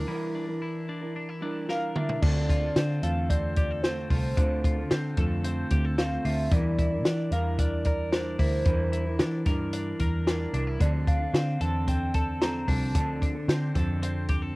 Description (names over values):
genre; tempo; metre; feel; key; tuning
jangly indie pop; 112 BPM; 4/4; straight; D minor; A4 = 440 Hz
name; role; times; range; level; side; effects
mellow electric guitar; accompaniment; 0.0-14.6 s; D3 to Bb4; -34 LUFS; right 3 dB; warbly pitch drift, cassette tape
twelve-string electric guitar; arpeggios; 0.0-14.6 s; D3 to Bb4; -33 LUFS; left 2 dB; cassette tape
vintage muted picked electric bass; bass; 0.0-14.6 s; C2 to E3; -29 LUFS; equal; none
hollow clarinet-like synth lead; melody; 1.7-13.2 s; C5 to Bb5; -33 LUFS; equal; chorus
compact cocktail drum kit; drums; 1.7-14.4 s; crash cymbal, hi-hat, kick drum, snare drum, toms; -26 LUFS; equal; cassette tape
room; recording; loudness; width
little or no reverb; home recording on cassette; -24 LUFS; side -22 dB against mid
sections
0.0-2.2 A section; 2.2-14.6 B section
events
break 0.1-2.2; drum fill 1.7-2.2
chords
0.0 Em7b5; 2.2 Dm7; 6.5 Em7b5; 10.8 Dm7